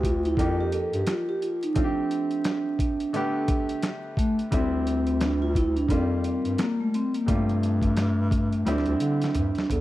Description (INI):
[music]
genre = hip hop, jazz-hop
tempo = 87 BPM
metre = 4/4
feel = swing 59% on 16ths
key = D minor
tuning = A4 = 436 Hz
[part]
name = vibraphone with soft mallets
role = melody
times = 0.0-9.8 s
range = A3 to A4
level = -26 LUFS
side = equal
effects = none
[part]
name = bright baby grand piano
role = accompaniment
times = 0.0-9.8 s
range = C3 to G4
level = -32 LUFS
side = left 1 dB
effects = none
[part]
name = breathy bass clarinet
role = bass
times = 0.0-9.8 s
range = D2 to D3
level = -27 LUFS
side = equal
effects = none
[part]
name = boom bap sampler-style drum kit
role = drums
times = 0.0-9.8 s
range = hi-hat, kick drum, snare drum, toms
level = -28 LUFS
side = equal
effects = none
[sound]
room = studio reverb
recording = dry, close 1970s-style studio recording, vinyl crackle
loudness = -23 LUFS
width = side -15 dB against mid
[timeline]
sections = 0.0-9.8 A section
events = drum fill 8.7-9.8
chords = 0.4 F9sus4; 1.8 G9sus4; 3.1 A9sus4; 4.5 D9sus4; 5.9 F9sus4; 7.3 G9sus4; 8.7 D9sus4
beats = 0.38 1.07 | 1.76 2.45 3.14 3.83 | 4.52 5.21 5.90 6.59 | 7.28 7.97 8.65 9.35